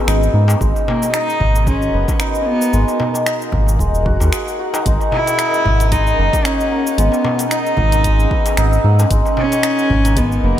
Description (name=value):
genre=organic downtempo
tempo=113 BPM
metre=4/4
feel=swing 56% on 16ths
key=unclear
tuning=A4 = 440 Hz
part: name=rich cello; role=melody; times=0.0-10.6 s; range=A#3 to E4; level=-20 LUFS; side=equal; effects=ping-pong delay
part: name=ethereal airy pad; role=sustained chords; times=0.0-10.6 s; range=C#4 to E6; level=-25 LUFS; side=equal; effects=ensemble chorus, built-in reverb, sidechain pumping
part: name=santur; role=arpeggios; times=0.0-10.6 s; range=G#3 to G#4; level=-20 LUFS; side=equal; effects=ping-pong delay
part: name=round analog bass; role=bass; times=0.1-10.5 s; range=D#1 to G#2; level=-15 LUFS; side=equal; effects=tube saturation
part: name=deep house drum kit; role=drums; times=0.1-10.4 s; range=cabasa, finger snaps, hi-hat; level=-24 LUFS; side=equal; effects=none
part: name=darbuka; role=percussion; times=0.5-10.1 s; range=none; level=-27 LUFS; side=left 2 dB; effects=none
part: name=electronic kick drum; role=drums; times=0.6-10.3 s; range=none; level=-20 LUFS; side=equal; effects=none
room=light reverb, studio ambience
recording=none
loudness=-13 LUFS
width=side -11 dB against mid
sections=0.0-10.6 A section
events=none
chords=0.0 E69/G#; 0.6 Bmaj7/G#; 2.7 G#sus2; 4.9 D#m7/G#; 7.0 E69/G#; 9.1 Bmaj7/G# (rootless)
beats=0.08 | 0.61 1.14 1.67 2.20 | 2.73 3.26 3.79 4.33 | 4.86 5.39 5.92 6.45 | 6.98 7.51 8.04 8.57 | 9.10 9.63 10.17